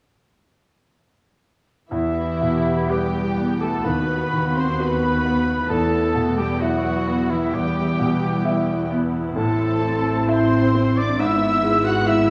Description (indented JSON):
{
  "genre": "classical",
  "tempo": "60-70 BPM",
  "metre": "4/4",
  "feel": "rubato",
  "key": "E minor",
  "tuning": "A4 = 440 Hz",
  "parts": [
    { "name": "clear concert grand piano", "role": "melody", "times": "1.9-12.3 s", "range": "D#2 to E5", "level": "-24 LUFS", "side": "equal", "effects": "none" },
    { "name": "muted symphonic violin section", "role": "melody", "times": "1.9-12.3 s", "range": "E5 to F#6", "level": "-34 LUFS", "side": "equal", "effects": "none" },
    { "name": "bright clarinet", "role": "second line", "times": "1.9-12.3 s", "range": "E4 to F#5", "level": "-32 LUFS", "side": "equal", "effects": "none" },
    { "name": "muted symphonic violin section", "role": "second line", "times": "1.9-12.3 s", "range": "E4 to F#5", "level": "-36 LUFS", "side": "equal", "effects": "none" },
    { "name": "silver concert flute", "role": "second line", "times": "1.9-12.3 s", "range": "E5 to F#6", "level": "-32 LUFS", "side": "equal", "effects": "none" },
    { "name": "warm oboe", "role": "second line", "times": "1.9-12.3 s", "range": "E4 to F#5", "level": "-33 LUFS", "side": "equal", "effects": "none" },
    { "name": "muted symphonic viola section", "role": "accompaniment", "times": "1.9-12.3 s", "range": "B3 to G4", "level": "-31 LUFS", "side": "equal", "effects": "none" },
    { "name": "mellow French horn section", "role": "sustained chords", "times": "1.9-12.3 s", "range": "E3 to F#4", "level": "-31 LUFS", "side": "equal", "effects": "none" },
    { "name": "muted symphonic cello section", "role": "bass", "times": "1.9-12.3 s", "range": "E3 to F#4", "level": "-32 LUFS", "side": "equal", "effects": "none" },
    { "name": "muted symphonic double bass section", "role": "bass", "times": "1.9-12.3 s", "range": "G#1 to E2", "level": "-30 LUFS", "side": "equal", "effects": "none" }
  ],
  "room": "moderate scoring stage reverb, RT60 1.9 s",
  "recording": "studio reverb",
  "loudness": "-21 LUFS",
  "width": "mono",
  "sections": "1.9-12.3 A section",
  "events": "none",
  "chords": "1.9 Em; 3.9 B/D#; 5.7 Em; 9.4 Am; 11.2 E/G#"
}